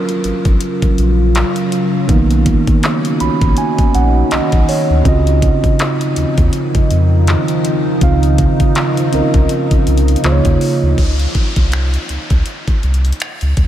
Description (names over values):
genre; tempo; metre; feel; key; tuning
contemporary R&B; 81 BPM; 4/4; swing 58% on 16ths; Db major; A4 = 440 Hz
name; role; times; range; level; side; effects
mellow tine electric piano; accompaniment; 0.0-11.0 s; Db3 to Cb6; -17 LUFS; right 3 dB; none
deep dark ambient pad; sustained chords; 0.0-11.0 s; Db3 to Gb4; -19 LUFS; left 1 dB; chorus, built-in reverb, sidechain pumping
smooth R&B drum kit; drums; 0.1-13.7 s; finger snaps, handclaps, hi-hat, kick drum; -17 LUFS; equal; none
warm sub bass; bass; 0.2-13.7 s; Ab1 to F2; -14 LUFS; equal; none
downlifter; sound effects; 11.0-13.7 s; none; -26 LUFS; left 1 dB; none
room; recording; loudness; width
light reverb; none; -11 LUFS; side -12 dB against mid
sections
0.0-11.0 A section; 11.0-13.7 B section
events
tine electric piano fill 2.8-5.1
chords
0.0 Gbmaj7; 2.1 Cbmaj7; 5.1 Dbmaj9; 10.2 Db6; 11.0 N.C.